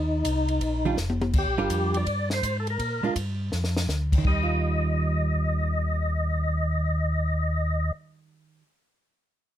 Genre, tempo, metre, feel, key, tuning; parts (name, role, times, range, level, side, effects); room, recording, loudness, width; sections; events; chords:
soul jazz organ trio; 165 BPM; 4/4; swing 65% on 8ths; Eb major; A4 = 440 Hz
percussive tonewheel organ; melody; 0.0-7.9 s; Eb4 to Eb5; -29 LUFS; left 1 dB; slow rotary speaker, overdrive, chorus vibrato
mellow tonewheel organ; bass; 0.0-7.9 s; F1 to Bb2; -26 LUFS; equal; slow rotary speaker
compact cocktail drum kit; drums; 0.2-4.4 s; crash cymbal, hi-hat, kick drum, ride cymbal, snare drum, toms; -28 LUFS; left 1 dB
archtop guitar, miked and amplified; accompaniment; 0.9-8.7 s; Eb3 to Bb4; -30 LUFS; right 5 dB
little or no reverb; close, detailed microphones; -23 LUFS; side -11 dB against mid
0.0-1.3 A section; 1.3-4.2 B section; 4.2-7.2 C section
drum fill 1.0-1.3, 3.5-3.9
0.0 Ebsus2; 1.3 Gm7; 2.8 Bb; 4.2 Ebadd9